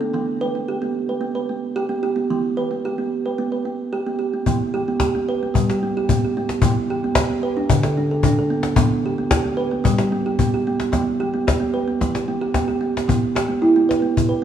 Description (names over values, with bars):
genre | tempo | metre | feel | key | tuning
world meditative, meditative tuned percussion | 111 BPM | 4/4 | straight | E minor pentatonic | A4 = 440 Hz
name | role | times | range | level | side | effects
kalimba | arpeggios | 0.0-14.4 s | D3 to B4 | -20 LUFS | right 3 dB | none
cajon | percussion | 4.5-14.3 s | none | -21 LUFS | left 3 dB | none
room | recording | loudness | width
wet echo chamber reverb, RT60 2.1 s | studio reverb | -18 LUFS | side -9 dB against mid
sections
0.0-4.5 A section; 4.5-13.1 B section; 13.1-14.4 A section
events
none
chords
0.1 Em; 5.5 G; 6.6 Em; 7.7 D5; 8.8 Em; 9.8 G; 10.9 Em; 13.1 E5